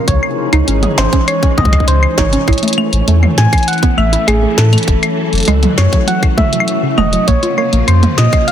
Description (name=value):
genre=IDM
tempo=100 BPM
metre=4/4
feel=straight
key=unclear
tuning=A4 = 440 Hz
part: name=soft struck synth lead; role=melody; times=0.0-8.5 s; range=Ab4 to Ab5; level=-17 LUFS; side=left 1 dB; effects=chorus, cassette tape, tape echo
part: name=soft string machine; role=sustained chords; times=0.0-8.5 s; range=C3 to Ab4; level=-19 LUFS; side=equal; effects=phaser, ensemble chorus, vintage 12-bit sampler grit
part: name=warm sub bass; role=bass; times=0.1-8.3 s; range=Fb1 to Bb2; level=-12 LUFS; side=equal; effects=none
part: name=electronic kick drum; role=drums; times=0.1-8.4 s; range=none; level=-13 LUFS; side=equal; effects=none
part: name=glitchy drum kit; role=drums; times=0.1-8.5 s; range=claves, hi-hat, snare drum, toms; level=-18 LUFS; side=left 1 dB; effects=soft clipping on snare
part: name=warbly dusty pluck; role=arpeggios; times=0.5-8.2 s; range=Db3 to Ab4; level=-19 LUFS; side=right 4 dB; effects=chorus, ping-pong delay
room=light reverb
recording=dense, heavily limited modern master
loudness=-10 LUFS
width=side -10 dB against mid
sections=0.0-8.5 A section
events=none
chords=0.1 Dbmadd9; 2.5 A; 4.9 Gbm7; 7.3 Bbmadd9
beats=| 0.08 0.68 1.28 1.88 | 2.48 3.08 3.68 4.28 | 4.88 5.48 6.08 6.68 | 7.28 7.88 8.48